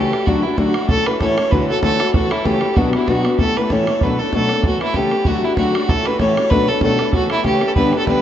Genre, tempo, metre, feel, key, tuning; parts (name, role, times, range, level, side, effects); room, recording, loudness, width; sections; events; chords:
celtic folk, Celtic reel; 192 BPM; 4/4; swing 55% on 8ths; A4 = 440 Hz
warm fiddle; melody; 0.0-8.2 s; E4 to C#5; -18 LUFS; right 1 dB
fingerpicked steel-string acoustic guitar; accompaniment; 0.0-8.2 s; G2 to A4; -18 LUFS; left 2 dB
bodhran; percussion; 0.1-8.1 s; -21 LUFS; right 1 dB
wet huge ambient reverb, RT60 8.3 s; in a vast, echoing space, nothing above 7.9 kHz; -14 LUFS; side -10 dB against mid
0.0-8.2 A section
0.3 D; 0.9 A; 1.5 Dadd9; 2.1 A; 2.8 Bm; 3.4 A; 4.0 Bm7; 4.6 A; 5.3 D; 5.9 A; 6.5 Bm7; 7.1 A